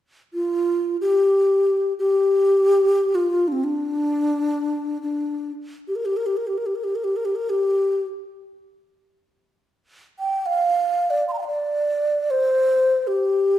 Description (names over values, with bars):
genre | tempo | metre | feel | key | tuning
chinese traditional | free time | none | none | G yu mode | A4 = 440 Hz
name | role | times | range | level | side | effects
breathy mellow low xiao | melody | 0.3-13.6 s | C4 to C6 | -19 LUFS | equal | none
room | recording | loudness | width
wet scoring stage reverb, RT60 1.5 s | minimal, uncompressed stereo recording | -19 LUFS | side -12 dB against mid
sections
0.0-13.6 A section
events
none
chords
none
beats
free time